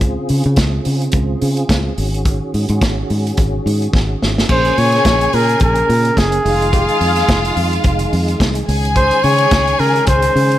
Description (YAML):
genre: disco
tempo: 107 BPM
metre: 4/4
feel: swing 56% on 16ths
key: Bb minor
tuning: A4 = 440 Hz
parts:
  - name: mellow tonewheel organ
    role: sustained chords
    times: 0.0-10.6 s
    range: Db3 to Ab4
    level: -23 LUFS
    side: right 2 dB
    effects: chorus vibrato, slow rotary speaker
  - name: fingered electric bass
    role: bass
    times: 0.0-10.6 s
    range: F1 to Db3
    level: -17 LUFS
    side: equal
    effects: none
  - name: vintage drum kit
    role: drums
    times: 0.0-10.6 s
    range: crash cymbal, hi-hat, kick drum, snare drum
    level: -18 LUFS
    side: equal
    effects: none
  - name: breathy flugelhorn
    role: melody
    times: 4.5-10.6 s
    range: Ab4 to Db5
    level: -15 LUFS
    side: equal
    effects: tape echo
  - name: clear studio string section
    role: second line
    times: 4.5-10.6 s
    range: F4 to Ab5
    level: -20 LUFS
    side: left 2 dB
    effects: none
room: light reverb, small room ambience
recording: none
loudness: -12 LUFS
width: side -13 dB against mid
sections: 0.0-4.5 A section; 4.5-10.6 B section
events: drum fill 3.9-4.5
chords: 0.0 Dbmaj7; 2.0 Ab7sus4; 4.5 Bbm7; 6.5 Fm7; 8.7 Dbmaj7(no3)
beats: | 0.01 0.57 1.14 1.70 | 2.26 2.82 3.38 3.94 | 4.50 5.05 5.61 6.17 | 6.73 7.29 7.85 8.40 | 8.96 9.52 10.08